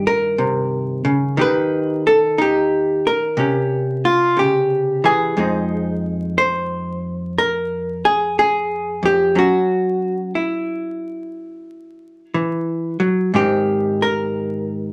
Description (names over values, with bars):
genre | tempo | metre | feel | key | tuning
solo jazz | 60 BPM | 4/4 | swing 67% on 8ths | F minor from 5.4 s | A4 = 441 Hz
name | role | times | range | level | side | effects
hollow-body jazz guitar | solo | 0.0-14.9 s | F2 to C5 | -19 LUFS | equal | none
room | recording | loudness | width
wet club reverb, RT60 0.5 s | vinyl crackle | -19 LUFS | mono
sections
0.0-5.4 A section; 5.4-14.9 B section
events
hollow-body jazz guitar solo 0.0-5.4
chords
0.0 Cm7; 1.4 Ebaug; 3.4 C; 5.4 Fm7; 9.4 Gb5; 13.3 Abadd9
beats
0.39 | 1.39 2.38 3.38 4.38 | 5.37 6.37 7.36 8.36 | 9.36 10.35 11.35 12.34 | 13.34 14.33